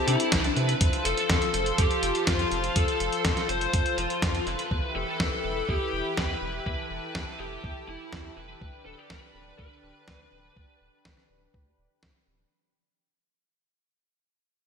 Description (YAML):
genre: italo disco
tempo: 123 BPM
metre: 4/4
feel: straight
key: unclear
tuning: A4 = 438 Hz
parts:
  - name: lead guitar through a small cranked amp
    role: melody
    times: 0.0-12.0 s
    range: E4 to C5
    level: -29 LUFS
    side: left 2 dB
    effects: overdrive, analog chorus, digital delay
  - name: lush unison pad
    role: sustained chords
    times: 0.0-12.5 s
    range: D3 to C5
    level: -33 LUFS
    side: equal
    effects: chorus
  - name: round analog bass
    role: bass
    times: 0.1-12.5 s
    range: D1 to C3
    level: -32 LUFS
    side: equal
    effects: none
  - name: dusty soul sampler-style drum kit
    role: drums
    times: 0.1-12.1 s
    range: hi-hat, snare drum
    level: -30 LUFS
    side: equal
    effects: gated reverb
  - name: electronic kick drum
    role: drums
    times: 0.3-12.1 s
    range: none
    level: -30 LUFS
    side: equal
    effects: none
room: moderate lush hall reverb, RT60 1.9 s, digital ambience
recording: bright 1980s-style digital production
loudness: -24 LUFS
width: side -6 dB against mid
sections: 0.0-12.5 A section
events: fade-out 0.0-12.5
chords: 0.0 C; 0.8 F; 4.7 Em; 8.6 G/D